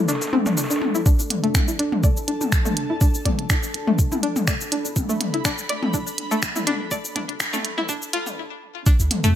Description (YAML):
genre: minimal techno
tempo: 123 BPM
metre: 4/4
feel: swing 54% on 16ths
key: unclear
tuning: A4 = 438 Hz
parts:
  - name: airy breathy pad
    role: texture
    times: 0.0-9.4 s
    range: D4 to B5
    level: -31 LUFS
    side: right 1 dB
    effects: chorus, sidechain pumping
  - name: string-like resonator pluck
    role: riff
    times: 0.1-9.3 s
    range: A3 to D5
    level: -25 LUFS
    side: left 2 dB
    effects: chorus, sidechain pumping, ping-pong delay
  - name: breakbeat sampler-style drum kit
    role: drums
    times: 0.1-1.1, 8.9-9.2 s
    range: hi-hat, snare drum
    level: -32 LUFS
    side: equal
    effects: sidechain pumping on hats, high-pass filter on hats, low-pass filter on hats, high-pass filter on snare, low-pass filter on snare, high-pass filter on room, low-pass filter on room
  - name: minimal click drum kit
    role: drums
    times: 0.1-9.3 s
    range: cabasa, finger snaps, hi-hat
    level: -27 LUFS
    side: right 1 dB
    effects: none
  - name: electronic toms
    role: percussion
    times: 0.3-9.2 s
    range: none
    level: -26 LUFS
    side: left 2 dB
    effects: tape echo
  - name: electronic kick drum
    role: drums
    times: 1.1-9.0 s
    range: none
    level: -19 LUFS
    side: equal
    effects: none
  - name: punchy sub bass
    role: bass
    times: 1.2-9.3 s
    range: D1 to F2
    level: -25 LUFS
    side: right 1 dB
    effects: tube saturation, sidechain pumping, high-pass filter
room: light reverb, digital ambience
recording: high-pass filter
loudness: -19 LUFS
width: side -11 dB against mid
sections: 0.0-1.1 A section; 1.1-8.9 B section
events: build-up 1.1-8.9; filter sweep on synth pluck 1.1-8.9; filter sweep 1.1-8.9; stop 8.4-8.9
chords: 0.0 D5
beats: 0.09 0.57 | 1.06 1.55 2.04 2.52 | 3.01 3.50 3.99 4.47 | 4.96 5.45 5.94 6.43 | 6.91 7.40 7.89 8.38 | 8.87 9.35